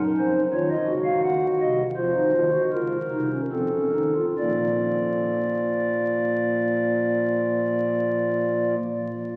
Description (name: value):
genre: classical, baroque-style 3-part fugue for pipe organ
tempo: 68-88 BPM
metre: 3/4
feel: straight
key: unclear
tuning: A4 = 440 Hz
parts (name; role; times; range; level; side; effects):
- pipe organ, stopped flute; solo; 0.0-8.8 s; Bb1 to Gb5; -24 LUFS; equal; none
room: wet cathedral reverb, RT60 4.6 s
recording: very old 78 rpm record, vinyl crackle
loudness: -24 LUFS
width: mono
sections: 0.0-4.4 A section; 4.4-9.4 B section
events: slowing down 0.0-4.4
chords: 0.0 Gb5; 1.2 Cdim/Eb; 2.0 F7sus4; 3.5 F7; 4.4 Bb